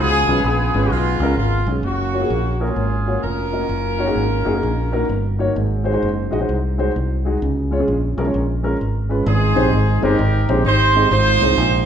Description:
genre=uptempo gospel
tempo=129 BPM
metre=4/4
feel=swing 65% on 8ths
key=F# major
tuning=A4 = 441 Hz
part: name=warm horn section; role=melody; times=0.0-5.4, 9.3-11.9 s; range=G#3 to C5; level=-19 LUFS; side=right 1 dB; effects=none
part: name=warm concert grand piano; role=accompaniment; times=0.0-11.8 s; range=G#2 to D#5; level=-21 LUFS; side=equal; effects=none
part: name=fingered electric bass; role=bass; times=0.0-11.8 s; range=E#1 to C#2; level=-20 LUFS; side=equal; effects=none
room=wet large studio reverb, RT60 1.3 s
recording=band playing live in one room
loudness=-16 LUFS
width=side -8 dB against mid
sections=0.0-1.8 A section; 1.8-9.3 B section; 9.3-11.9 A section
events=none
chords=0.0 C#7; 1.8 F#maj7; 3.7 D#m7/F#; 5.6 G#7; 7.4 C#; 9.3 Abmaj7; 11.1 Fm7/Ab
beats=0.45 0.91 1.37 | 1.84 2.30 2.77 3.23 | 3.70 4.17 4.63 5.10 | 5.56 6.03 6.49 6.96 | 7.42 7.89 8.35 8.81 | 9.28 9.74 10.20 10.66 | 11.12 11.58

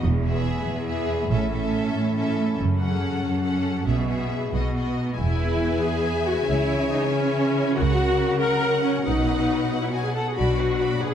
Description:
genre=cinematic, heroic adventure film score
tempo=93 BPM (dotted quarters)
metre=6/8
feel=straight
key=E major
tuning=A4 = 440 Hz
part: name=rich symphonic violin section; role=melody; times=0.0-11.1 s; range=D#5 to B5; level=-34 LUFS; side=left 3 dB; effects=none
part: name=concert harp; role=arpeggios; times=0.0-11.1 s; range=E2 to A4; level=-30 LUFS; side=left 6 dB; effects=none
part: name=rich symphonic cello section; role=bass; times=0.0-11.1 s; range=E2 to C#3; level=-27 LUFS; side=right 2 dB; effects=none
part: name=warm studio double bass section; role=bass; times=0.0-10.8 s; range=E1 to C#2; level=-26 LUFS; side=right 2 dB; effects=none
part: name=rich symphonic violin section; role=second line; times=0.2-11.1 s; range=F#4 to F#5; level=-31 LUFS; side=left 2 dB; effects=none
part: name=warm symphonic viola section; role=accompaniment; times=0.2-11.1 s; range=B3 to A#4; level=-27 LUFS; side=equal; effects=none
part: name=mellow French horn section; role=sustained chords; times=5.2-11.1 s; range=E3 to A#4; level=-30 LUFS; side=left 4 dB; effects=none
room=moderate scoring stage reverb, RT60 1.8 s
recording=dark, warm production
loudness=-21 LUFS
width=side -9 dB against mid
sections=0.0-5.2 A section; 5.2-11.1 B section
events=build-up 0.0-5.2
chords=0.0 E; 1.3 A; 2.6 F#m; 3.9 E/B; 4.5 B; 5.2 E; 6.5 C#m; 7.8 F#/C#; 9.1 B; 10.4 Bm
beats=| 0.03 0.67 | 1.31 1.95 | 2.58 3.22 | 3.87 4.52 | 5.18 5.83 | 6.47 7.11 | 7.77 8.41 | 9.06 9.71 | 10.37 11.02

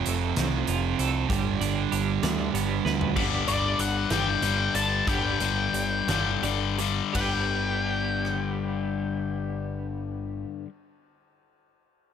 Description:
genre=quiet-loud alternative rock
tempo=54-64 BPM (dotted quarters)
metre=6/8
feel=straight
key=G mixolydian, G major from 3.2 s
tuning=A4 = 440 Hz
part: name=twelve-string electric guitar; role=arpeggios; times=0.0-10.7 s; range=F3 to B4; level=-36 LUFS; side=right 8 dB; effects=tremolo
part: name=thick fuzz guitar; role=riff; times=0.0-3.2 s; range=F2 to G3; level=-27 LUFS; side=right 12 dB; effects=distortion
part: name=growling picked electric bass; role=bass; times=0.1-10.4 s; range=F1 to D2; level=-30 LUFS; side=equal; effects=overdrive
part: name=huge arena drum kit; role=drums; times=0.1-8.4 s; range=crash cymbal, hi-hat, kick drum, ride cymbal, rim click, snare drum, toms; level=-33 LUFS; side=equal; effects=none
part: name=crunchy overdriven guitar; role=riff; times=3.2-10.7 s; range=G2 to G3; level=-28 LUFS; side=left 11 dB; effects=none
part: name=octave-fuzz lead guitar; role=melody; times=3.5-10.5 s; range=D5 to A5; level=-30 LUFS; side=left 2 dB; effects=distortion
room=small room ambience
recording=none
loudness=-24 LUFS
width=side -8 dB against mid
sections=0.0-3.2 A section; 3.2-7.1 B section; 7.1-11.6 C section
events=drum fill 2.9-3.2; slowing down 3.2-7.1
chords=0.0 F; 1.3 G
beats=0.37 | 1.30 2.23 | 3.16 4.10 | 5.07 6.08 | 7.15 8.25 | 9.35 10.46

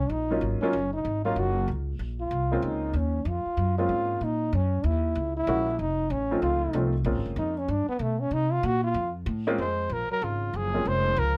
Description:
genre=jazz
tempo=190 BPM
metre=4/4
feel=swing 62% on 8ths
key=Bb minor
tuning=A4 = 441 Hz
part: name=mellow trombone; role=second line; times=0.0-11.4 s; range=Db3 to Gb4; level=-31 LUFS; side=equal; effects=none
part: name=upright bass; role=bass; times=0.0-11.4 s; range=F1 to C3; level=-31 LUFS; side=equal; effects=none
part: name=warm upright piano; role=accompaniment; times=0.3-11.2 s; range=F3 to Gb4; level=-32 LUFS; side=equal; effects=none
part: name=breathy trumpet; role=melody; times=9.6-11.4 s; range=F4 to C5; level=-30 LUFS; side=equal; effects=none
room=light reverb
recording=none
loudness=-27 LUFS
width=mono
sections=0.0-9.6 A section; 9.6-11.4 B section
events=trombone solo 0.0-9.6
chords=0.0 Ebm7; 2.0 Bbm7; 4.5 Gb7; 5.8 F7; 7.1 Bbm7; 7.7 G; 8.3 Ebm69; 9.0 F; 9.6 Bbm7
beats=0.10 0.42 | 0.73 1.05 1.37 1.68 | 2.00 2.32 2.63 2.95 | 3.27 3.58 3.90 4.21 | 4.53 4.85 5.16 5.48 | 5.79 6.11 6.43 6.74 | 7.06 7.38 7.69 8.01 | 8.32 8.64 8.96 9.27 | 9.59 9.90 10.22 10.54 | 10.85 11.17

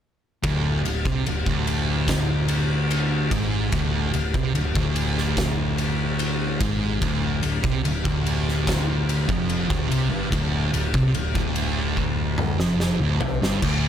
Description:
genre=stoner and doom metal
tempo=73 BPM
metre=4/4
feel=straight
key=D minor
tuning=A4 = 440 Hz
part: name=thick fuzz guitar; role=riff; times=0.4-13.9 s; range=D2 to C3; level=-27 LUFS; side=left 7 dB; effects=distortion
part: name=thick fuzz guitar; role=riff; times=0.4-13.9 s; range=D2 to C3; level=-26 LUFS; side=right 8 dB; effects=distortion
part: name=hollow-body short-scale fingered electric bass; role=bass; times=0.4-13.9 s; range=D1 to C2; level=-28 LUFS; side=equal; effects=overdrive
part: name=oversized low-tuned drum kit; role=drums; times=0.4-13.8 s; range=crash cymbal, kick drum, ride cymbal, snare drum, toms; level=-26 LUFS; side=left 1 dB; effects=none
room=light reverb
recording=none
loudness=-21 LUFS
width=side -9 dB against mid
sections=0.4-13.9 A section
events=drum fill 12.0-13.6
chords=0.4 Dm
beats=| 0.44 1.26 2.08 2.91 | 3.73 4.55 5.37 6.20 | 7.02 7.84 8.67 9.49 | 10.32 11.14 11.97 12.80 | 13.62

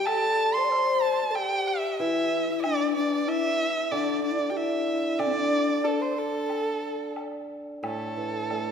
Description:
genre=chinese traditional, Chinese chamber ensemble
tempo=93 BPM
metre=4/4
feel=rubato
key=A yu mode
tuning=A4 = 440 Hz
part: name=warm erhu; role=melody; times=0.0-8.7 s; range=A4 to C6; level=-27 LUFS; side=right 2 dB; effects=none
part: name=breathy mellow low xiao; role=second line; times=0.0-7.1 s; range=C4 to D5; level=-28 LUFS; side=left 5 dB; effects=none
part: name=hammered dulcimer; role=accompaniment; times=0.0-8.7 s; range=A2 to A3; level=-32 LUFS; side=right 3 dB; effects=none
part: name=woodblock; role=percussion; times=0.1-8.7 s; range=none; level=-38 LUFS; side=equal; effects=none
room=wet concert hall reverb, RT60 2.0 s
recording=none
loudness=-24 LUFS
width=side -7 dB against mid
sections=0.0-7.8 A section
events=none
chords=none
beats=| 0.08 0.72 1.36 2.01 | 2.65 3.28 3.92 4.56 | 5.20 5.84 6.49 7.17 | 7.84 8.50

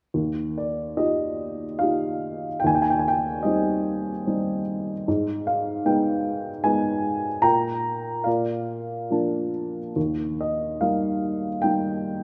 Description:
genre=classical, lyrical solo piano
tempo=70-76 BPM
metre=3/4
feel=rubato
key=Eb major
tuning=A4 = 440 Hz
part: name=dark upright piano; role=solo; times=0.1-12.2 s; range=Eb2 to Bb5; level=-25 LUFS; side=equal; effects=none
room=moderate concert hall reverb, RT60 2.1 s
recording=none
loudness=-25 LUFS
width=mono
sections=0.1-12.2 A section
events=none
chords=0.1 Ebadd9; 2.6 Cm/Eb; 5.1 Abm; 7.4 Gm/Bb; 8.3 Bb; 10.0 Eb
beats=| 0.13 0.98 1.81 | 2.63 3.45 4.26 | 5.07 5.86 6.65 | 7.44 8.26 9.11 | 9.96 10.80 11.63

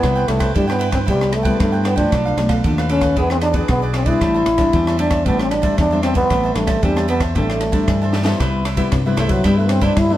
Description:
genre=samba and choro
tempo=115 BPM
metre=4/4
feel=straight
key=A minor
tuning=A4 = 444 Hz
part: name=growling trombone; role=melody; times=0.0-10.2 s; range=F#3 to E4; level=-19 LUFS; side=equal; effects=plate reverb
part: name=cavaquinho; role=accompaniment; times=0.0-10.2 s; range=D4 to A5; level=-27 LUFS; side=right 2 dB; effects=none
part: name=nylon-string guitar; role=accompaniment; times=0.0-10.2 s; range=G2 to G#4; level=-22 LUFS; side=left 2 dB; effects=none
part: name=fingered electric bass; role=bass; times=0.0-10.2 s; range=A1 to C3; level=-20 LUFS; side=equal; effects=none
part: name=compact cocktail drum kit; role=drums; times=0.0-10.1 s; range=kick drum, ride cymbal, rim click, snare drum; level=-22 LUFS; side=equal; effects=none
room=moderate studio reverb, RT60 0.7 s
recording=heard from further back in the room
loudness=-15 LUFS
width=side -13 dB against mid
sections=0.0-8.4 A section; 8.4-10.2 B section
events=drum fill 8.1; trombone solo 8.4-10.2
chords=0.0 Cmaj7; 2.1 Bm7b5; 3.2 E7; 4.2 Am11; 8.4 Cmaj7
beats=| 0.04 0.56 1.08 1.60 | 2.12 2.65 3.17 3.69 | 4.21 4.74 5.26 5.78 | 6.30 6.83 7.35 7.88 | 8.40 8.92 9.45 9.97

